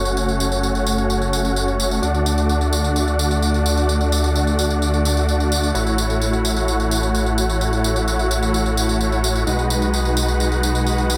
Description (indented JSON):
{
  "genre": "EDM, festival progressive house",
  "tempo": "129 BPM",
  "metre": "4/4",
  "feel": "straight",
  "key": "unclear",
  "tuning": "A4 = 440 Hz",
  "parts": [
    { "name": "big supersaw lead", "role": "riff", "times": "0.0-11.2 s", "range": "G#3 to F#5", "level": "-22 LUFS", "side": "equal", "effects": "low-pass filter, tape echo" },
    { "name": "detuned saw bass", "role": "bass", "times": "0.0-11.2 s", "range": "F#1 to D2", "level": "-23 LUFS", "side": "equal", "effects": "chorus" },
    { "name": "tambourine", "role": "drums", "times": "0.1-11.2 s", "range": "none", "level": "-28 LUFS", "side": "equal", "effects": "none" }
  ],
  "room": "light reverb",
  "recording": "none",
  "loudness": "-19 LUFS",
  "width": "mono",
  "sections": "0.0-11.2 A section",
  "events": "none",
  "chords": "0.0 F#m; 2.0 D; 5.7 A6; 9.5 B6"
}